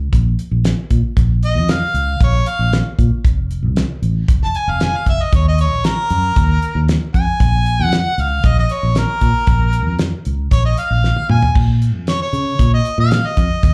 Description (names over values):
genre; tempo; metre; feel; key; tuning
straight-eighth soul blues; 116 BPM; 4/4; straight; Bb minor; A4 = 440 Hz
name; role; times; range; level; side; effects
fingered electric bass; bass; 0.0-13.7 s; F1 to Db3; -18 LUFS; equal; none
damped 70s drum kit; drums; 0.1-13.7 s; crash cymbal, hi-hat, kick drum, snare drum, toms; -19 LUFS; equal; none
clear harmonica; melody; 1.5-13.7 s; Bb4 to A5; -22 LUFS; equal; overdrive, plate reverb, slapback echo
room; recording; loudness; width
light reverb; live gig heard through the venue's PA, club reverb; -16 LUFS; mono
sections
0.0-11.6 A section; 11.6-13.7 B section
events
drum fill 11.0-11.6; harmonica solo 11.6-13.7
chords
0.0 Bb5; 3.2 N.C.; 5.3 Eb5; 7.4 Bb7(no3); 11.6 Bbm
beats
0.13 0.65 | 1.17 1.69 2.21 2.73 | 3.25 3.77 4.28 4.80 | 5.32 5.84 6.36 6.88 | 7.40 7.92 8.44 8.96 | 9.48 10.00 10.52 11.04 | 11.56 12.07 12.59 13.11 | 13.63